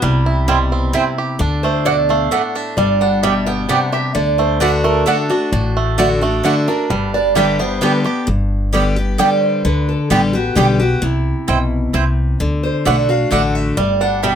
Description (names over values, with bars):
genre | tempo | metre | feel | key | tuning
bluegrass | 131 BPM | 3/4 | straight | G major | A4 = 440 Hz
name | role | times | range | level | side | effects
bluegrass banjo | melody | 0.0-8.3, 13.8-14.4 s | G3 to G4 | -21 LUFS | right 5 dB | none
picked acoustic archtop guitar | melody | 0.0-14.4 s | E4 to G5 | -20 LUFS | right 2 dB | none
picked steel-string acoustic guitar | accompaniment | 0.0-14.4 s | G2 to G4 | -19 LUFS | left 2 dB | none
upright bass | bass | 0.0-14.4 s | G1 to D2 | -19 LUFS | equal | none
mandolin | stabs | 0.5-14.3 s | A3 to G5 | -18 LUFS | right 6 dB | none
room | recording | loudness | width
moderate studio ambience, RT60 0.5 s | none | -14 LUFS | side -8 dB against mid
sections
0.0-8.3 A section; 8.3-14.4 A section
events
none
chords
0.0 C; 1.4 D; 2.8 G; 4.2 D; 6.9 G; 11.0 C; 12.4 D; 13.8 G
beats
| 0.03 0.48 0.94 | 1.40 1.86 2.32 | 2.77 3.23 3.69 | 4.15 4.61 5.07 | 5.53 5.98 6.44 | 6.90 7.36 7.82 | 8.28 8.73 9.19 | 9.65 10.11 10.57 | 11.03 11.48 11.94 | 12.40 12.86 13.32 | 13.78 14.23